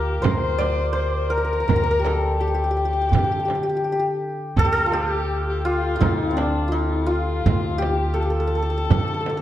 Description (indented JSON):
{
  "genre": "Persian modal ensemble",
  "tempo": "83 BPM",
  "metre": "4/4",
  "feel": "straight",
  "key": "D dastgah shur",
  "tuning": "A4 = 442 Hz",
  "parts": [
    { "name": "santur", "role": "melody", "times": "0.0-9.4 s", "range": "C4 to D5", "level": "-23 LUFS", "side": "left 1 dB", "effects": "none" },
    { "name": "dark kamancheh", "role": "second line", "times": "0.0-9.4 s", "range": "D4 to C5", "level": "-28 LUFS", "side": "left 5 dB", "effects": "none" },
    { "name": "upright bass", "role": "bass", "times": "0.0-9.4 s", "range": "D2 to D3", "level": "-25 LUFS", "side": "equal", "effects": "none" },
    { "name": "frame drum", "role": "percussion", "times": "0.2-9.4 s", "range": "none", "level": "-27 LUFS", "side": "right 6 dB", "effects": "none" },
    { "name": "tombak", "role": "percussion", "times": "0.2-9.4 s", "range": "none", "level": "-25 LUFS", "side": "right 2 dB", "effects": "none" }
  ],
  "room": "moderate recital hall reverb, RT60 1.6 s",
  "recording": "dark, warm production",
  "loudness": "-19 LUFS",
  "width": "side -12 dB against mid",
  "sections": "0.0-9.4 A section",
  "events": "none",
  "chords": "none",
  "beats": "0.24 0.96 | 1.69 2.41 3.13 3.85 | 4.58 5.30 6.02 6.75 | 7.47 8.19 8.91"
}